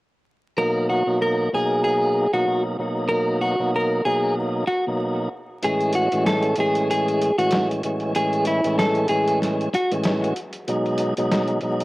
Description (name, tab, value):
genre	hip hop, boom-bap hip-hop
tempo	95 BPM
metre	4/4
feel	swing 58% on 16ths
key	unclear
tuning	A4 = 435 Hz
part	clean electric guitar	melody	0.6-9.9 s	E4 to A#4	-22 LUFS	equal	high-pass filter, low-pass filter, cassette tape, analog delay
part	tonewheel organ	accompaniment	0.6-11.8 s	A2 to D#4	-23 LUFS	equal	overdrive, fast rotary speaker, high-pass filter, low-pass filter, cassette tape
part	boom bap sampler-style drum kit	drums	5.6-11.8 s	hi-hat, snare drum	-27 LUFS	equal	cassette tape
room	moderate spring reverb, RT60 2.6 s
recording	home recording on cassette, vinyl crackle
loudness	-19 LUFS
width	side -19 dB against mid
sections	0.6-5.6 A section; 5.6-11.8 B section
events	kick muted 5.6-11.8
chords	0.6 Bmaj7; 5.6 Amaj7; 10.7 G#m7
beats	| 0.58 1.21 1.84 2.47 | 3.10 3.73 4.37 5.00 | 5.63 6.26 6.89 7.53 | 8.16 8.79 9.42 10.05 | 10.68 11.31